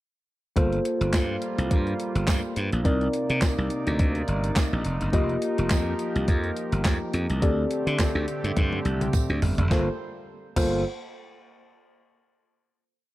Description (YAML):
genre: early-eighties boogie funk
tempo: 105 BPM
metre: 4/4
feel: swing 56% on 16ths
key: G minor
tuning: A4 = 439 Hz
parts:
  - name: tine electric piano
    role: accompaniment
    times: 0.6-10.8 s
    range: Bb3 to Eb5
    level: -29 LUFS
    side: left 1 dB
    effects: none
  - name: chorused pulse-width pad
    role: sustained chords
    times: 0.6-10.0 s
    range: C3 to D5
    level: -34 LUFS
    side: right 2 dB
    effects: none
  - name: glassy slap bass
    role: bass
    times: 0.6-10.8 s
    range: F1 to D3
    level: -26 LUFS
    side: equal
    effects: none
  - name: crisp 8-bit digital drum machine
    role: drums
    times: 0.6-10.7 s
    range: crash cymbal, handclaps, hi-hat, kick drum, snare drum, toms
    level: -25 LUFS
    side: equal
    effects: none
  - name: tambourine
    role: percussion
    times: 1.1-10.8 s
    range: none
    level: -41 LUFS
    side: right 15 dB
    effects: none
room: little or no reverb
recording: none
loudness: -22 LUFS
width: side -16 dB against mid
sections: 0.6-9.7 verse; 9.7-12.0 final chord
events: drum fill 8.6-9.7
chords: 0.6 Gm11; 2.9 Cm9; 5.1 F9sus4; 7.4 D7sus4; 9.7 Gm11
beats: | 0.56 1.14 1.71 2.28 | 2.85 3.42 3.99 4.57 | 5.14 5.71 6.28 6.85 | 7.42 7.99 8.56 9.14 | 9.71 10.28